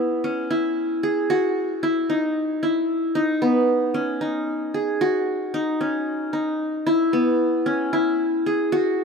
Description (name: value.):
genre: progressive instrumental, progressive.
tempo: 226 BPM (eighths).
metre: 7/8.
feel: straight.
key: unclear.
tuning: A4 = 440 Hz.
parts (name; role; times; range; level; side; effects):
qanun; solo; 0.0-9.0 s; B3 to G#4; -20 LUFS; equal; none.
room: moderate plate reverb, RT60 3.1 s.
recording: rough home demo mix.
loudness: -20 LUFS.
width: side -5 dB against mid.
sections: 0.0-6.9 A section; 6.9-9.0 B section.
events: none.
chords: 0.0 Bsus24; 1.3 D#m; 3.2 G#m; 5.0 C#sus24; 6.9 E.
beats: 0.24 0.51 0.77 1.03 | 1.30 1.56 1.83 2.10 2.36 2.62 2.89 | 3.15 3.42 3.68 3.95 4.21 4.48 4.74 | 5.01 5.27 5.54 5.80 6.07 6.33 6.60 | 6.86 7.13 7.39 7.66 7.92 8.19 8.46 | 8.72 8.98.